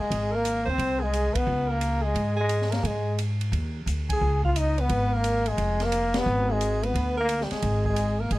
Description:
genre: jazz, small-group swing and bop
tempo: 175 BPM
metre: 4/4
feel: swing 65% on 8ths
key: unclear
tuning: A4 = 440 Hz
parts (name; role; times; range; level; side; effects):
- bright trombone; melody; 0.0-8.4 s; G3 to Ab4; -27 LUFS; left 1 dB; none
- warm alto saxophone; second line; 0.0-8.4 s; G4 to Ab5; -32 LUFS; right 2 dB; none
- upright bass; bass; 0.1-8.4 s; F1 to Ab2; -26 LUFS; equal; none
- open jazz drum kit; drums; 0.1-8.4 s; hi-hat, kick drum, ride cymbal, snare drum; -34 LUFS; equal; none
room: light reverb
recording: close, detailed microphones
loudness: -23 LUFS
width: side -18 dB against mid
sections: 0.0-8.4 A section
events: band accent 1.3, 4.0, 6.1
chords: 0.0 Abadd9; 1.5 Db5; 2.8 Ab5; 4.2 Db7; 6.9 Bb7b9

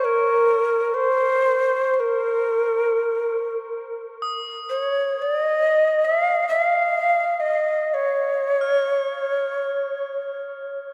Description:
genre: world meditative, free-time meditation music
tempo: free time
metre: none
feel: none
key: unclear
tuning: A4 = 439 Hz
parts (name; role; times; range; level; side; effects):
- breathy mellow Native American-style cedar flute; melody; 0.0-10.4 s; Bb4 to F5; -22 LUFS; equal; tape echo
- crotales; texture; 0.0-10.9 s; Db6 to F6; -34 LUFS; equal; none
room: wet cathedral reverb, RT60 4.4 s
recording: dark, warm production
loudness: -22 LUFS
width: mono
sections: 0.0-3.9 A section; 3.9-10.9 A section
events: none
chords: none

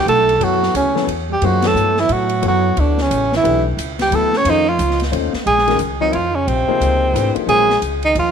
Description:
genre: modal jazz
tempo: 178 BPM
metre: 3/4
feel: swing 62% on 8ths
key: unclear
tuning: A4 = 440 Hz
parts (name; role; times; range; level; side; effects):
- breathy tenor saxophone; melody; 0.0-8.3 s; C4 to C#5; -16 LUFS; right 1 dB; none
- mellow trombone; second line; 0.0-8.3 s; C3 to C#4; -24 LUFS; right 11 dB; none
- warm grand piano; accompaniment; 0.0-7.7 s; Eb3 to C#5; -22 LUFS; left 13 dB; none
- upright bass; bass; 0.0-8.3 s; Ab1 to A2; -21 LUFS; equal; none
- open jazz drum kit; drums; 0.1-8.2 s; hi-hat, ride cymbal, snare drum; -28 LUFS; equal; none
room: light reverb, studio reverb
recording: 1960s-style stereo with parts hard left and right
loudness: -14 LUFS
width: side -7 dB against mid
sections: 0.0-5.5 A section; 5.5-8.3 B section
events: band accent 1.6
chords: 0.0 Bm11; 4.4 F7b13; 5.5 Ab7sus2

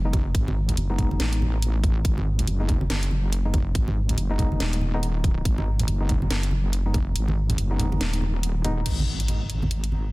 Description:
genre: deep dubstep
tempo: 141 BPM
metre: 4/4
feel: swing 60% on 16ths, half-time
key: G# phrygian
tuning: A4 = 440 Hz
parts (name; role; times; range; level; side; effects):
- wobble bass; bass; 0.0-10.1 s; D#1 to A1; -24 LUFS; equal; chorus
- overdriven tine electric piano; stabs; 0.1-8.8 s; G#3 to D#4; -33 LUFS; left 2 dB; fast tremolo, low-pass filter, dub echo
- electronic kick drum; drums; 0.1-7.0 s; none; -24 LUFS; equal; small room ambience
- garage drum kit; drums; 0.1-9.9 s; crash cymbal, hi-hat, snare drum; -32 LUFS; equal; small room ambience
- congas; percussion; 0.1-10.0 s; none; -30 LUFS; right 1 dB; none
- impact; sound effects; 8.9-10.1 s; none; -29 LUFS; equal; none
room: digital ambience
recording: dense, heavily limited modern master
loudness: -22 LUFS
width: side -21 dB against mid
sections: 0.0-8.9 A section; 8.9-10.1 B section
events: kick drops out 7.2-8.9; impact 8.9-10.1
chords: 0.0 G#m; 8.9 N.C.

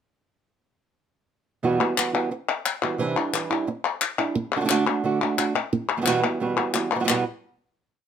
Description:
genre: flamenco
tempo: 176 BPM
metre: 4/4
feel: straight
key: E minor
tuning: A4 = 439 Hz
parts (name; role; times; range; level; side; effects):
- flamenco guitar; accompaniment; 1.6-7.2 s; E2 to F#4; -23 LUFS; right 4 dB; none
- palmas hand claps; percussion; 1.8-7.2 s; none; -24 LUFS; left 7 dB; none
room: moderate studio reverb, RT60 0.6 s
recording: close, detailed microphones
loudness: -22 LUFS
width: side -8 dB against mid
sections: 1.6-7.1 groove; 7.1-8.1 final chord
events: none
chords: 1.6 Emadd9; 3.0 Cadd9; 4.4 D; 5.7 Emadd9

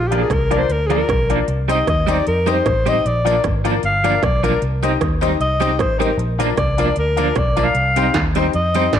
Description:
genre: ska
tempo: 153 BPM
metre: 4/4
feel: swing 54% on 8ths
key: C minor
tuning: A4 = 440 Hz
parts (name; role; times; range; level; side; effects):
- breathy alto saxophone; melody; 0.0-9.0 s; G4 to F5; -20 LUFS; left 1 dB; none
- vintage muted fingered electric bass; bass; 0.0-9.0 s; G1 to F2; -21 LUFS; equal; none
- clean electric guitar; accompaniment; 0.1-8.9 s; F3 to Eb4; -24 LUFS; right 8 dB; tremolo
- bright upright piano; stabs; 0.1-9.0 s; C4 to Eb5; -22 LUFS; left 10 dB; none
- industrial drum kit; drums; 0.1-9.0 s; hi-hat, kick drum, rim click, snare drum; -22 LUFS; right 2 dB; distortion
- tambourine; percussion; 1.7-8.8 s; none; -42 LUFS; left 12 dB; none
room: moderate echo chamber reverb, RT60 1.3 s, small room ambience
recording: 1960s-style stereo with parts hard left and right, vinyl crackle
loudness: -15 LUFS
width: side -9 dB against mid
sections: 0.0-9.0 A section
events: alto saxophone solo 0.0-9.0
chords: 0.0 Bb; 1.5 Cm; 3.0 Bb; 4.6 Cm; 6.2 Bb; 7.8 Cm

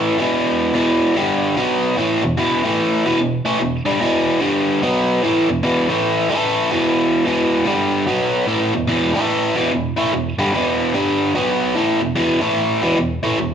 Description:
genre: rock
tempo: 147 BPM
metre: 4/4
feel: swing 63% on 8ths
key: unclear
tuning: A4 = 442 Hz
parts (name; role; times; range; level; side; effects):
- biting overdriven guitar; solo; 0.0-13.5 s; E2 to B3; -15 LUFS; equal; none
room: moderate large studio reverb, RT60 0.9 s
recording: band playing live in one room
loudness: -15 LUFS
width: side -8 dB against mid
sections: 0.0-7.3 A section; 7.3-13.5 A section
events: none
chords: 0.1 E5; 1.2 G5; 1.6 B5; 2.0 E5; 2.6 A5; 3.0 E5; 4.4 G5; 4.8 B5; 5.2 E5; 5.8 A5; 6.7 E5; 7.7 G5; 8.1 B5; 8.5 E5; 9.1 A5; 9.5 E5; 10.9 G5; 11.3 B5; 11.8 E5; 12.4 A5; 12.8 E5

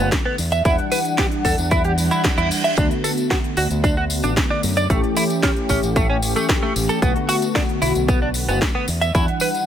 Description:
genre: nu-disco, nu disco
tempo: 113 BPM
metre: 4/4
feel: straight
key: D major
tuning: A4 = 444 Hz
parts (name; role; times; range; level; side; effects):
- mellow synth brass; accompaniment; 0.0-9.7 s; D3 to F#5; -23 LUFS; left 1 dB; chorus, sidechain pumping, digital delay
- direct-recorded clean electric guitar; riff; 0.0-9.5 s; A3 to E5; -22 LUFS; right 2 dB; analog chorus, digital delay
- fingered electric bass with an envelope filter; bass; 0.0-9.3 s; F#1 to F#2; -23 LUFS; equal; none
- electronic kick drum; drums; 0.1-9.3 s; none; -21 LUFS; equal; none
- house drum kit; drums; 0.1-9.7 s; hi-hat, snare drum; -26 LUFS; equal; none
- tambourine; percussion; 0.1-9.7 s; none; -31 LUFS; left 5 dB; none
- reverse cymbal; sound effects; 1.9-2.8 s; none; -30 LUFS; right 5 dB; none
room: light reverb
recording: none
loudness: -17 LUFS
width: side -9 dB against mid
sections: 0.0-9.7 A section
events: reverse cymbal 1.9-2.8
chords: 0.4 Em9; 2.8 D6; 4.9 A7; 7.0 Bm7; 8.9 Em9

